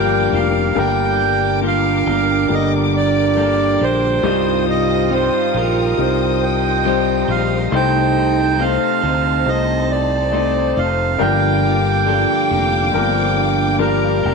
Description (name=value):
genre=pop ballad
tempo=69 BPM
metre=4/4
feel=straight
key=G minor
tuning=A4 = 440 Hz
part: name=accordion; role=melody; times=0.0-14.3 s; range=Bb4 to G5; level=-20 LUFS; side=right 6 dB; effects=slapback echo
part: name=warm concert grand piano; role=accompaniment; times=0.0-14.3 s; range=G2 to C5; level=-20 LUFS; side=left 13 dB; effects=none
part: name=dark studio string section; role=sustained chords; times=0.0-14.3 s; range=Bb3 to Eb6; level=-26 LUFS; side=left 2 dB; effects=none
part: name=twelve-string electric guitar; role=arpeggios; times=0.0-14.3 s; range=G2 to A4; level=-27 LUFS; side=left 1 dB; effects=none
part: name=fingered electric bass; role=bass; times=0.0-14.3 s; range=F1 to D2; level=-21 LUFS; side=left 1 dB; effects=none
part: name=dark French horn section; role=second line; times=0.8-14.2 s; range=C4 to F4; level=-22 LUFS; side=right 10 dB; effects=none
room=moderate echo chamber reverb, RT60 1.3 s, studio ambience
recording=1960s-style stereo with parts hard left and right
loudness=-14 LUFS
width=side -4 dB against mid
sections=0.8-14.3 A section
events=none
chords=0.0 Gm7; 0.8 Gm; 4.2 Cm; 7.7 Adim/C; 11.2 Gm7